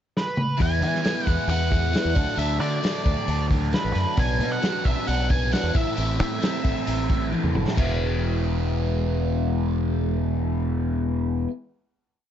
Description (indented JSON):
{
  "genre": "indie rock",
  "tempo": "134 BPM",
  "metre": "4/4",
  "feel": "straight",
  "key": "E mixolydian",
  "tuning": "A4 = 439 Hz",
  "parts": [
    { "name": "octave-fuzz lead guitar", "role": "melody", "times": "0.2-7.3 s", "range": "B4 to G#5", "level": "-29 LUFS", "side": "right 1 dB", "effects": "distortion, digital delay" },
    { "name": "vintage drum kit", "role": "drums", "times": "0.2-7.9 s", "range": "crash cymbal, hi-hat, kick drum, snare drum, toms", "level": "-26 LUFS", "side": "equal", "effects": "none" },
    { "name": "overdriven electric guitar", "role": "riff", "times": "0.6-11.5 s", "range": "A2 to E4", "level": "-26 LUFS", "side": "equal", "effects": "phaser" },
    { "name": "growling fingered electric bass", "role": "bass", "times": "0.6-11.5 s", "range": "E1 to E3", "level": "-25 LUFS", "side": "equal", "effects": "overdrive" }
  ],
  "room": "studio reverb",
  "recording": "dark, warm production, nothing above 7.7 kHz",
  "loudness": "-21 LUFS",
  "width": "side -10 dB against mid",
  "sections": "0.0-0.6 pickup bar; 0.6-7.8 interlude; 7.8-11.4 final chord",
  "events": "drum fill 0.2-0.6, 7.3-7.8",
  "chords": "0.0 N.C.; 0.6 E; 2.2 D; 4.2 Bm; 5.7 Am; 7.8 E",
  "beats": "0.15 | 0.60 1.05 1.49 1.94 | 2.38 2.83 3.28 3.73 | 4.18 4.63 5.08 5.52 | 5.97 6.42 6.87 7.32 | 7.77 8.22 8.67 9.12 | 9.57 10.01 10.46 10.91"
}